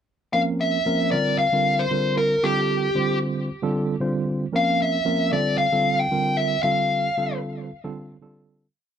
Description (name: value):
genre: jazz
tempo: 114 BPM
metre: 4/4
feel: swing 53% on 16ths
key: unclear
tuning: A4 = 436 Hz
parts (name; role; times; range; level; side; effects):
- dark smooth lead guitar; melody; 0.3-7.4 s; G4 to G5; -22 LUFS; left 1 dB; overdrive
- tine electric piano; accompaniment; 0.3-8.7 s; D3 to C5; -24 LUFS; right 2 dB; medium stereo tremolo
room: light reverb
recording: dry, close 1970s-style studio recording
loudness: -20 LUFS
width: side -8 dB against mid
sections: 0.3-8.7 A section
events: fade-out 6.6-8.7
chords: 0.3 Bbmadd9; 1.1 C9sus4; 2.4 G9sus4; 4.5 Bbmadd9; 5.3 C9sus4; 6.6 G9sus4